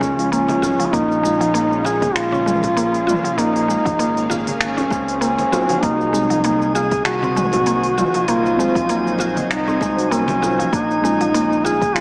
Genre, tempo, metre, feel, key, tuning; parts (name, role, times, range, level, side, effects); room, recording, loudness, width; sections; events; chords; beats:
organic downtempo; 98 BPM; 4/4; swing 56% on 16ths; Bb minor; A4 = 436 Hz
mellow duduk; melody; 0.0-12.0 s; Db4 to Ab4; -21 LUFS; equal; tape echo
muted felt-like synth keys; accompaniment; 0.0-12.0 s; F3 to C5; -28 LUFS; equal; chorus, sidechain pumping, tape echo
bowed-like drone; sustained chords; 0.0-12.0 s; Bb2 to F5; -30 LUFS; equal; built-in reverb, sidechain pumping
mallet-like synth pluck; arpeggios; 0.0-12.0 s; F3 to F4; -25 LUFS; equal; chorus, tape echo
smooth gliding synth bass; bass; 0.0-12.0 s; Ab1 to Db2; -31 LUFS; equal
electronic kick drum; drums; 0.0-11.9 s; -28 LUFS; equal
organic electronic drum kit; drums; 0.0-12.0 s; finger snaps, hi-hat, shaker, toms; -29 LUFS; equal; overdrive
congas; percussion; 0.0-11.9 s; -33 LUFS; equal
swell; sound effects; 4.9-5.8 s; -33 LUFS; equal
drifting glass-harmonics texture; texture; 6.4-12.0 s; Ab5; -33 LUFS; equal; chorus, built-in reverb
wet lush hall reverb, RT60 1.9 s, digital ambience; dreamy mix soaked in reverb, small speaker sound; -18 LUFS; mono
0.0-12.0 A section
swell 4.9-5.8
0.0 Db; 0.9 Bbm7; 5.8 Cdim; 10.7 Bbm7
0.32 | 0.93 1.54 2.15 2.77 | 3.38 3.99 4.60 5.22 | 5.83 6.44 7.05 7.67 | 8.28 8.89 9.50 10.11 | 10.73 11.34 11.95